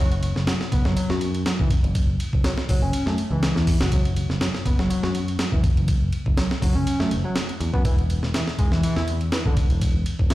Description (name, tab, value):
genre	breakbeat, breaks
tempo	122 BPM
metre	4/4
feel	swing 54% on 16ths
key	unclear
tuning	A4 = 438 Hz
part	overdriven synth lead	riff	0.0-10.3 s	D3 to F#4	-26 LUFS	equal	ping-pong delay
part	picked electric bass	bass	0.0-10.3 s	E1 to F#2	-24 LUFS	equal	tube saturation
part	breakbeat sampler-style drum kit	drums	0.1-10.3 s	hi-hat, kick drum, ride cymbal, snare drum	-23 LUFS	equal	none
room	digital ambience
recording	played on a big sound system in a bare room, large studio reverb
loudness	-20 LUFS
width	side -16 dB against mid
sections	0.0-10.3 A section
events	none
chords	0.0 F#7(no3); 7.9 N.C.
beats	0.47 0.97 1.46 | 1.95 2.44 2.93 3.42 | 3.92 4.41 4.90 5.39 | 5.88 6.38 6.87 7.36 | 7.85 8.34 8.84 9.33 | 9.82 10.31